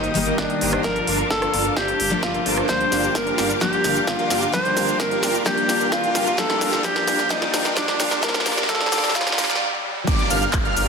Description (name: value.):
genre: EDM, festival progressive house.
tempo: 130 BPM.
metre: 4/4.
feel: straight.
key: G minor.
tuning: A4 = 441 Hz.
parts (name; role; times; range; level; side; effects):
breathy alto saxophone; melody; 0.0-9.6 s; D4 to C5; -23 LUFS; equal; ping-pong delay.
picked steel-string acoustic guitar; accompaniment; 0.0-9.6 s; Eb3 to D5; -28 LUFS; left 4 dB; sidechain pumping, ping-pong delay.
bright symphonic string section; sustained chords; 0.0-9.6 s; Bb3 to Eb6; -33 LUFS; left 1 dB; sidechain pumping.
supersaw chords; riff; 0.0-10.9 s; Bb3 to F5; -25 LUFS; right 1 dB; lush chorus, vintage 12-bit sampler grit, sidechain pumping, low-pass filter, ping-pong delay.
wide detuned saw bass; bass; 0.0-10.9 s; G1; -32 LUFS; equal; chorus, sidechain pumping.
big-room dance drum kit; drums; 0.0-10.9 s; cabasa, crash cymbal, handclaps, hi-hat, rim click, snare drum; -24 LUFS; equal; soft clipping on snare, high-pass filter on snare, high-pass filter on hats, high-pass filter on perc, high-pass filter on cymbals, high-pass filter on room.
riser and downlifter; sound effects; 0.5-10.9 s; none; -32 LUFS; right 1 dB; none.
electronic kick drum; drums; 0.4-10.6 s; none; -28 LUFS; equal; none.
wide unison lead; arpeggios; 10.1-10.9 s; D6 to F6; -25 LUFS; equal; sidechain pumping, ping-pong delay.
room: wet digital room reverb, RT60 1.0 s, digital ambience.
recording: dense, heavily limited modern master, high-pass filter.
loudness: -18 LUFS.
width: side -5 dB against mid.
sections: 0.0-10.1 A section.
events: build-up 0.0-10.1; drum fill 0.0-9.6; filter sweep on supersaw synth 0.0-10.1; filter sweep 0.0-10.1; stop 9.6-10.1.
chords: 0.0 Eb/G; 0.8 Bbmaj7/G; 2.7 Gm7; 8.2 Bbmaj7/G; 10.1 Gm7.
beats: 0.38 | 0.84 1.30 1.77 2.23 | 2.69 3.15 3.61 4.08 | 4.54 5.00 5.46 5.92 | 6.38 6.84 7.30 7.77 | 8.23 8.69 9.15 9.61 | 10.07 10.54.